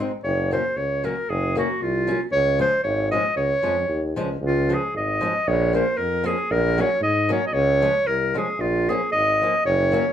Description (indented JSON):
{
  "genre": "alpine folk, alpine dance band",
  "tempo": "115 BPM",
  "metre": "2/4",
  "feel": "swing 54% on 8ths",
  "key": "Db major",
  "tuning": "A4 = 441 Hz",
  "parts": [
    { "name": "fingerpicked old ladder-braced acoustic guitar", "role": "accompaniment", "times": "0.0-10.1 s", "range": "F3 to Eb4", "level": "-27 LUFS", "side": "left 2 dB", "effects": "none" },
    { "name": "clear tuba", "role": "bass", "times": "0.0-10.0 s", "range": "Gb1 to Ab2", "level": "-24 LUFS", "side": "right 1 dB", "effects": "none" },
    { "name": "warm clarinet", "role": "melody", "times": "0.2-10.1 s", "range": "F4 to Eb5", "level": "-21 LUFS", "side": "equal", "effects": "none" }
  ],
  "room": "moderate studio reverb, RT60 0.5 s",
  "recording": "band playing live in one room",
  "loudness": "-19 LUFS",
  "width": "side -9 dB against mid",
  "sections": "0.0-4.4 A section; 4.4-10.1 B section",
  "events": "none",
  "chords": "0.2 Gb; 2.3 Db; 5.5 Bbm; 6.5 Gb/Bb; 7.5 Db; 8.6 Bbm"
}